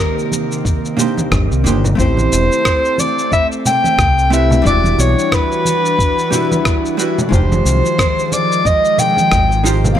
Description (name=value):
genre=sunset chillout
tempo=90 BPM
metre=4/4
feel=swing 58% on 16ths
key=unclear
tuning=A4 = 440 Hz
part: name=mellow soprano saxophone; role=melody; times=0.0-10.0 s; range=Bb4 to G5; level=-16 LUFS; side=left 1 dB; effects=tape echo
part: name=vintage hollow-body jazz guitar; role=accompaniment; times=0.0-10.0 s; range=G3 to E5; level=-20 LUFS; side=moving between left 2 dB and right 5 dB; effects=auto-pan, tape echo
part: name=airy breathy pad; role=sustained chords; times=0.0-10.0 s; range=C3 to F#4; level=-22 LUFS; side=left 1 dB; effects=chorus
part: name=electronic shaker and rim click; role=drums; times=0.0-10.0 s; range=none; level=-21 LUFS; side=left 1 dB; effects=none
part: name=congas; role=percussion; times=0.3-10.0 s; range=none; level=-22 LUFS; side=right 2 dB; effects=none
part: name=electronic kick drum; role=drums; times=0.6-9.5 s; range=none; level=-18 LUFS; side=equal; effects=none
part: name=deep dub fingered electric bass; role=bass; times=1.3-9.9 s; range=E1 to C2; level=-15 LUFS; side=equal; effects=none
room=light reverb, digital ambience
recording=none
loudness=-12 LUFS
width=side -10 dB against mid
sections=0.0-10.0 A section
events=none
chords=0.0 Cm9; 2.0 Am7; 4.7 Em9; 7.3 Fm9